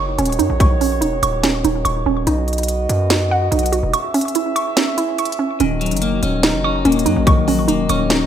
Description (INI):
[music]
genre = hip hop, trap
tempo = 144 BPM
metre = 4/4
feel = half-time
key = Eb phrygian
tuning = A4 = 440 Hz
[part]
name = warm French horn section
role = sustained chords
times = 0.0-8.3 s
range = Eb3 to E5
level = -24 LUFS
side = right 3 dB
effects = none
[part]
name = hollow square pluck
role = arpeggios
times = 0.0-8.3 s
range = Db4 to Db6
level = -19 LUFS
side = right 3 dB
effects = chorus, ping-pong delay
[part]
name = distorted 808-style bass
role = bass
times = 0.0-8.3 s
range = Eb1 to Gb2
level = -21 LUFS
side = equal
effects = distortion
[part]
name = trap drum kit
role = drums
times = 0.2-8.2 s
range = hi-hat, kick drum, snare drum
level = -19 LUFS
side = equal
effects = none
[part]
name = clean electric guitar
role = accompaniment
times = 5.6-8.3 s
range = Eb3 to Eb4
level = -19 LUFS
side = left 5 dB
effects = none
[sound]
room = light reverb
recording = none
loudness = -15 LUFS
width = side -9 dB against mid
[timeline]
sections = 0.0-8.3 A section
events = kick muted 3.9-5.6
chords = 0.0 Ebm7; 2.3 B; 3.9 E6; 5.6 Ebm7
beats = 0.18 | 0.60 1.02 1.44 1.85 | 2.27 2.69 3.10 3.52 | 3.94 4.35 4.77 5.18 | 5.60 6.02 6.43 6.85 | 7.27 7.68 8.10